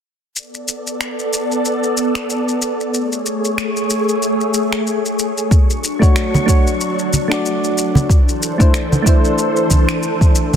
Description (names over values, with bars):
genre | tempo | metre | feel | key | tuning
sunset chillout | 93 BPM | 4/4 | swing 57% on 16ths | B dorian | A4 = 441 Hz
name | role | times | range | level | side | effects
soft string machine | sustained chords | 0.6-10.6 s | E3 to C#6 | -19 LUFS | equal | phaser, ensemble chorus
electronic shaker and finger snaps | drums | 0.4-10.6 s | none | -23 LUFS | left 2 dB | soft clipping on snare
electronic kick drum | drums | 5.5-10.3 s | none | -12 LUFS | equal | none
soft electric-piano-like synth keys | accompaniment | 6.0-10.6 s | A3 to D5 | -19 LUFS | right 1 dB | chorus, auto-pan, tape echo
congas | percussion | 6.3-10.6 s | none | -15 LUFS | right 1 dB | none
room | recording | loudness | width
light reverb | dense, heavily limited modern master | -14 LUFS | side -8 dB against mid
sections
0.4-10.6 A section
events
none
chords
0.4 Bm7; 2.9 Amaj7; 5.5 Dmaj7; 8.1 C69